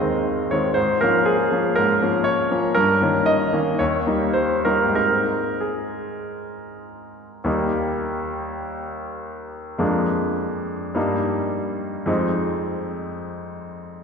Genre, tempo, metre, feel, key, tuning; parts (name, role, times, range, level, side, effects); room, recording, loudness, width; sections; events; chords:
classical, romantic character piece for solo piano; 93-123 BPM; 4/4; rubato; Ab major, Eb major from 7.5 s; A4 = 440 Hz
bright concert grand piano; solo; 0.0-14.0 s; Eb2 to F5; -20 LUFS; equal
wet church reverb, RT60 2.7 s; minimal, uncompressed stereo recording; -19 LUFS; side -6 dB against mid
0.0-7.5 A section; 7.5-14.0 B section
0.0 Ab; 0.8 Bbm7/Ab; 2.8 Eb7/G; 3.8 Eb; 5.0 Ab; 7.5 Eb; 9.8 Bb7/F; 11.0 Eb/G; 12.1 Fm7